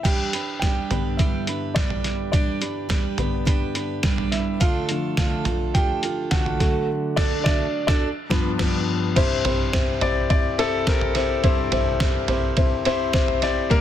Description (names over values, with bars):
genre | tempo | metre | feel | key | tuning
piano-driven pop | 105 BPM | 4/4 | straight | C mixolydian from 9.2 s | A4 = 442 Hz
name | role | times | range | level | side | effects
dark grand piano | accompaniment | 0.0-13.8 s | C2 to G5 | -24 LUFS | left 2 dB | none
picked steel-string acoustic guitar | riff | 0.0-8.8 s | D3 to B4 | -27 LUFS | right 7 dB | none
trip hop sampler-style drum kit | drums | 0.0-13.8 s | crash cymbal, hi-hat, kick drum, ride cymbal, snare drum, toms | -22 LUFS | equal | none
room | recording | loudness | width
little or no reverb | dense, heavily limited modern master | -20 LUFS | side -10 dB against mid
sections
0.0-9.2 A section; 9.2-13.8 B section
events
grand piano solo 0.0-9.2; band accent 6.9-9.2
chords
0.0 G; 4.6 Dm; 6.6 D; 8.0 G7; 9.2 C